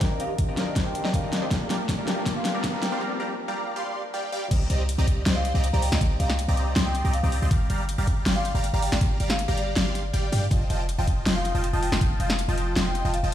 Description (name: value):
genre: future bass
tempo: 160 BPM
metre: 4/4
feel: half-time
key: C minor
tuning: A4 = 440 Hz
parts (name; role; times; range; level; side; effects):
- clear concert grand piano; accompaniment; 0.0-4.5 s; Eb3 to Bb4; -34 LUFS; left 3 dB; sidechain pumping, ping-pong delay
- supersaw stab; riff; 0.0-13.3 s; F3 to C6; -30 LUFS; equal; phaser, sidechain pumping, low-pass filter, ping-pong delay
- dubstep drum kit; drums; 0.0-13.2 s; crash cymbal, hi-hat, snare drum; -29 LUFS; left 1 dB; none
- electronic kick drum; drums; 0.0-12.1 s; none; -24 LUFS; equal; overdrive
- riser; sound effects; 0.2-3.0 s; none; -35 LUFS; equal; none
- marimba with medium mallets; melody; 0.2-3.0, 5.4-13.3 s; D5 to Bb5; -34 LUFS; left 1 dB; sidechain pumping, ping-pong delay
- warm 808-style bass; bass; 4.5-13.3 s; F1 to G2; -25 LUFS; equal; sidechain pumping
room: digital ambience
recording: played on a big sound system in a bare room, stone room reverb, high-pass filter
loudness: -22 LUFS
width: side -11 dB against mid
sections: 0.0-4.5 A section; 4.5-13.3 B section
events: build-up 0.0-4.5; drum fill 0.0-3.0; filter sweep on supersaw synth 0.0-4.5; filter sweep 0.0-4.5; riser 0.2-3.0; break 3.0-4.5; drop 4.5-13.3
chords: 0.0 Cm9; 1.5 Gm7; 4.5 Cm9; 7.5 Gm7; 10.5 F7